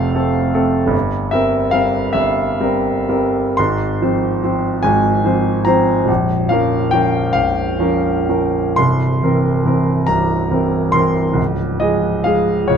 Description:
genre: classical, romantic nocturne for solo piano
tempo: 39-51 BPM (dotted quarters)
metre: 12/8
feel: rubato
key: unclear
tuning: A4 = 439 Hz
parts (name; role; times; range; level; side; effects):
- clear concert grand piano; solo; 0.0-12.8 s; Bb0 to C6; -14 LUFS; equal; none
room: light reverb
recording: minimal, uncompressed stereo recording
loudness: -14 LUFS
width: side -7 dB against mid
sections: 0.0-12.8 A section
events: none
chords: 0.0 F; 0.9 C7/G; 3.6 Fm/Ab; 6.1 Bbm; 8.8 C7; 11.4 Db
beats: | 0.94 2.15 3.58 4.84 | 6.09 7.36 8.79 10.09 | 11.39 12.71

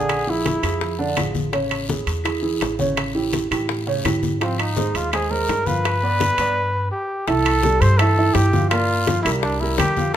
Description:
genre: Afro-Cuban jazz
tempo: 167 BPM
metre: 4/4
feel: straight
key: unclear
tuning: A4 = 439 Hz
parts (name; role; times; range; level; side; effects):
- breathy trumpet; melody; 0.0-1.0, 4.4-10.2 s; C4 to C5; -22 LUFS; equal; none
- warm upright piano; accompaniment; 0.0-10.1 s; C#3 to F5; -23 LUFS; right 3 dB; none
- upright bass; bass; 0.0-10.2 s; A1 to A2; -24 LUFS; equal; none
- bongos; percussion; 0.1-10.2 s; none; -29 LUFS; left 7 dB; none
- claves; percussion; 0.1-10.0 s; none; -35 LUFS; left 5 dB; none
- congas; percussion; 0.1-10.2 s; none; -28 LUFS; left 3 dB; none
- guiro; percussion; 0.1-10.2 s; none; -35 LUFS; left 6 dB; none
- timbales; percussion; 0.1-10.0 s; none; -28 LUFS; right 5 dB; none
room: moderate large studio reverb, RT60 1.2 s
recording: minimal, uncompressed stereo recording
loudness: -18 LUFS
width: side -10 dB against mid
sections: 0.0-7.3 A section; 7.3-10.2 B section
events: stop 6.6-7.3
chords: 0.1 Bb7#11; 1.5 Amaj7; 3.0 A7; 4.4 Ab69; 5.8 G7; 7.3 C6; 8.7 Gm7; 9.4 C5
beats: | 0.09 0.45 0.81 1.17 | 1.53 1.89 2.25 2.61 | 2.97 3.33 3.69 4.04 | 4.40 4.76 5.12 5.48 | 5.84 6.20 6.56 6.92 | 7.28 7.64 8.00 8.36 | 8.71 9.07 9.43 9.79 | 10.15

